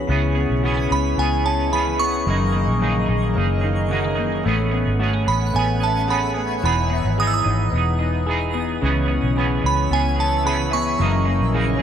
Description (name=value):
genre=dream pop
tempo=110 BPM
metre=4/4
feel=straight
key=C# minor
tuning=A4 = 440 Hz
part: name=pipe organ, principal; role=sustained chords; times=0.0-11.8 s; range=D#3 to D#5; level=-27 LUFS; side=equal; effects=none
part: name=semi-hollow electric guitar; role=arpeggios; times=0.0-11.8 s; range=F#2 to G#4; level=-25 LUFS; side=left 5 dB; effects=analog chorus, ping-pong delay
part: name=vintage muted fingered electric bass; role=bass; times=0.0-11.8 s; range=E1 to C#2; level=-22 LUFS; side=equal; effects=none
part: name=clean electric guitar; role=accompaniment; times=0.1-11.8 s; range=F#2 to G#4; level=-26 LUFS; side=right 5 dB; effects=harmonic tremolo, analog chorus
part: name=twinkling granular texture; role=texture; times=0.1-11.8 s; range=C#5 to B5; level=-34 LUFS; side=left 2 dB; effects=built-in reverb, ping-pong delay
part: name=glassy synth bell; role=melody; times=0.9-11.8 s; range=G#5 to E6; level=-23 LUFS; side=right 4 dB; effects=chorus, ping-pong delay
room=light reverb, digital ambience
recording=dark, warm production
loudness=-18 LUFS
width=side -9 dB against mid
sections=0.1-11.8 A section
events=none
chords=0.1 C#m7; 2.3 F#13; 4.5 Amaj9; 6.6 Emaj7; 8.8 C#m7; 11.0 F#13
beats=| 0.09 0.64 1.18 1.73 | 2.27 2.82 3.36 3.91 | 4.45 5.00 5.54 6.09 | 6.63 7.18 7.73 8.27 | 8.82 9.36 9.91 10.45 | 11.00 11.54